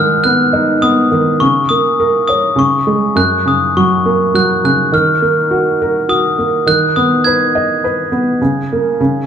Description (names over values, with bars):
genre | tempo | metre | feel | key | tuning
children's music, lullaby | 103 BPM | 3/4 | straight | unclear | A4 = 440 Hz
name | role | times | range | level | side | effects
glockenspiel with hard plastic mallets | melody | 0.0-9.3 s | C#6 to G#6 | -14 LUFS | left 3 dB | none
felt-muted upright piano | accompaniment | 0.0-9.3 s | F#2 to D#5 | -13 LUFS | right 2 dB | none
room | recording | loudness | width
wet recital hall reverb, RT60 1.5 s | dark, warm production | -11 LUFS | side -8 dB against mid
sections
0.0-9.3 A section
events
felt piano fill 9.0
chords
0.0 G#m7; 1.4 A#madd11/C#; 2.6 C#5; 3.2 F#; 4.9 D#madd9; 6.7 G#m/D#; 8.4 A#m7/C#